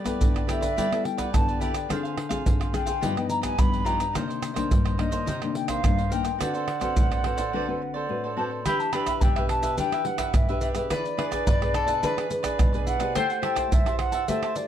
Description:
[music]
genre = samba and choro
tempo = 107 BPM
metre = 4/4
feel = straight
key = E minor from 8.7 s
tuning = A4 = 440 Hz
[part]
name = cavaquinho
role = accompaniment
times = 0.0-14.6 s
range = D4 to A5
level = -33 LUFS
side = right 4 dB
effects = none
[part]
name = nylon-string guitar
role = accompaniment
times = 0.0-14.7 s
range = G2 to C5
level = -30 LUFS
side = left 5 dB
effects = none
[part]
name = maracas, surdo, pandeiro and tamborim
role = percussion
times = 0.1-14.7 s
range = none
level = -25 LUFS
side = right 1 dB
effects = none
[part]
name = baroque flute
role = melody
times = 0.5-14.7 s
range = D5 to B5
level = -29 LUFS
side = equal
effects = plate reverb
[part]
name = mandolin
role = second line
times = 8.7-14.7 s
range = G4 to C5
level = -31 LUFS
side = left 2 dB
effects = none
[sound]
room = moderate studio reverb, RT60 0.5 s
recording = dark, warm production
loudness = -23 LUFS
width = side -10 dB against mid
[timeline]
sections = 0.0-8.7 A section; 8.7-14.7 B section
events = break 7.5-8.7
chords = 0.0 G69; 1.9 Dm7b5; 3.0 Gaug7; 4.1 Cm9; 6.4 D6; 8.7 Em7; 10.9 E7; 13.2 Am7

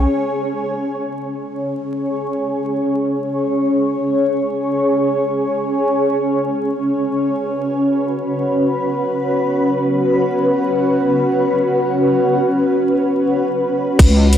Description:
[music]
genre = deep dubstep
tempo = free time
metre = none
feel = none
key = unclear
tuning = A4 = 441 Hz
[part]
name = granular cloud pad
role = sustained chords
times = 0.0-14.4 s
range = C#4 to C#5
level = -16 LUFS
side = equal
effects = built-in reverb, vintage 12-bit sampler grit
[part]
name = deep soft wobble bass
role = bass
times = 0.0-0.1, 14.0-14.4 s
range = C#2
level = -12 LUFS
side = equal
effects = chorus, transformer saturation
[part]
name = electronic kick drum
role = drums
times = 14.0-14.1 s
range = none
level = -8 LUFS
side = equal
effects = studio ambience
[part]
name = garage drum kit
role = drums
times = 14.0-14.4 s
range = crash cymbal, hi-hat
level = -21 LUFS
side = left 2 dB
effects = studio ambience
[sound]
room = moderate lush hall reverb, RT60 1.9 s, digital ambience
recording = dry, gritty hardware recording, vinyl crackle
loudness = -15 LUFS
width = side -10 dB against mid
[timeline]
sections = 0.1-14.0 A section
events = none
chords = 0.1 C#5

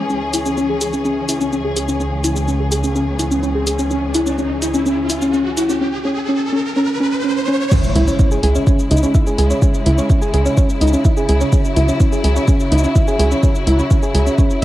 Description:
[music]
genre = melodic techno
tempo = 126 BPM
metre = 4/4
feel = straight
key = C# minor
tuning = A4 = 440 Hz
[part]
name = warm symphonic string section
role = sustained chords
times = 0.0-14.6 s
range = C#2 to G#4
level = -22 LUFS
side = left 1 dB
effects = sidechain pumping, cassette tape
[part]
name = soft round pluck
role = arpeggios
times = 0.0-14.6 s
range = C#4 to G#5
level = -18 LUFS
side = equal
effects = chorus, sidechain pumping, cassette tape, tape echo
[part]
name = punchy analog drum machine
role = drums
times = 0.1-14.6 s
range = crash cymbal, hi-hat, shaker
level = -26 LUFS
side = left 1 dB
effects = sidechain pumping on hats, cassette tape, sidechain pumping on perc, sidechain pumping on cymbals
[part]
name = riser and impact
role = sound effects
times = 2.0-9.6 s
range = none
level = -25 LUFS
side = equal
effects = none
[part]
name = electronic kick drum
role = drums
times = 7.7-14.5 s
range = none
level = -14 LUFS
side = equal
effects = overdrive, cassette tape
[part]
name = tight sequencer bass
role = bass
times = 8.0-14.6 s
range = C#2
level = -14 LUFS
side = equal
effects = sidechain pumping
[sound]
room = moderate small room ambience, RT60 0.5 s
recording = home recording on cassette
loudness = -14 LUFS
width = side -14 dB against mid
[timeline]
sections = 0.0-7.7 A section; 7.7-14.6 B section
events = build-up 0.0-7.7; filter sweep on synth arpeggio sound 0.0-7.7; riser 2.0-7.7; drop 7.7-14.6; impact 7.7-9.6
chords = 0.1 E6/C#; 7.7 C#m

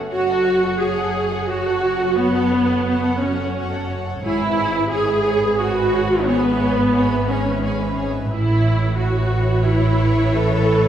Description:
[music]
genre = cinematic, emotional film score for orchestra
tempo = 88 BPM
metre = 3/4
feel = rubato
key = F# minor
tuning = A4 = 440 Hz
[part]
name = warm symphonic violin section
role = second line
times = 0.0-10.9 s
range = F#4 to F#5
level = -28 LUFS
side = left 1 dB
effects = none
[part]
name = clear symphonic violin section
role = melody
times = 0.1-10.9 s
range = C#5 to G#5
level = -35 LUFS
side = left 2 dB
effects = none
[part]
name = rich symphonic viola section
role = accompaniment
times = 0.1-10.9 s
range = B3 to A4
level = -19 LUFS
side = right 1 dB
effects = none
[part]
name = dark symphonic double bass section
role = bass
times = 0.1-10.9 s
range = F#1 to A1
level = -23 LUFS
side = right 2 dB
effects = none
[part]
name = rich symphonic cello section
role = bass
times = 0.1-10.9 s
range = F#2 to A2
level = -26 LUFS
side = right 2 dB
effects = none
[sound]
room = wet scoring stage reverb, RT60 2.0 s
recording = heard from further back in the room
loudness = -17 LUFS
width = side -10 dB against mid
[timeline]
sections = 0.1-10.9 A section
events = none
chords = 0.1 F#m; 4.2 C#m7/G#; 8.3 Aadd9

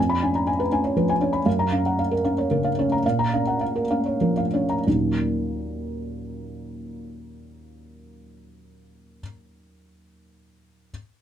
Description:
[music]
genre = neoclassical minimalist piano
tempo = 90-122 BPM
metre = 3/4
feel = rubato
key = Eb minor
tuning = A4 = 441 Hz
[part]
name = felt-muted upright piano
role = solo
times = 0.0-10.9 s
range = Eb2 to Cb6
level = -21 LUFS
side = equal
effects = none
[sound]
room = light reverb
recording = none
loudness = -20 LUFS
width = side -9 dB against mid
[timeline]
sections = 0.0-4.9 A section; 4.9-8.7 B section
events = slowing down 0.7-4.9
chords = 0.0 Db7/F; 1.5 Gbmaj7; 3.0 Bbm; 4.9 Ebm7

